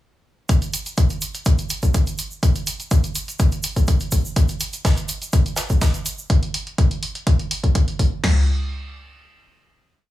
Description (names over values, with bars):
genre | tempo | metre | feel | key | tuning
house | 124 BPM | 4/4 | straight | none | none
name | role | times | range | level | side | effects
electronic hi-hat | drums | 0.5-8.1 s | none | -29 LUFS | right 1 dB | none
punchy analog drum machine | drums | 0.5-8.4 s | crash cymbal, kick drum, snare drum, toms | -18 LUFS | equal | none
egg shaker | percussion | 0.5-6.3 s | none | -31 LUFS | right 3 dB | none
tight metal drum kit | drums | 4.4-6.2 s | hi-hat, snare drum | -29 LUFS | right 1 dB | high-pass filter on hats, high-pass filter on snare, high-pass filter on room
room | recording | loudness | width
little or no reverb | heavily compressed radio sound, multiband compression, small room ambience | -18 LUFS | side -15 dB against mid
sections
0.5-8.2 groove; 8.2-10.1 final hit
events
none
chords
none